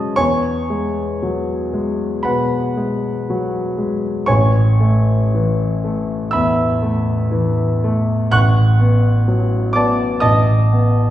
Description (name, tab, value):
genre	classical, impressionist solo piano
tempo	57-64 BPM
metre	4/4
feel	rubato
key	unclear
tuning	A4 = 436 Hz
part	clear concert grand piano	solo	0.0-11.1 s	A1 to F#6	-14 LUFS	equal	none
room	wet scoring stage reverb, RT60 1.5 s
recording	heard from further back in the room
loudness	-14 LUFS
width	side -13 dB against mid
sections	0.0-11.1 A section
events	none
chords	0.2 E69; 4.3 Amaj7; 8.3 Bm7/A; 10.2 Esus4/A (rootless)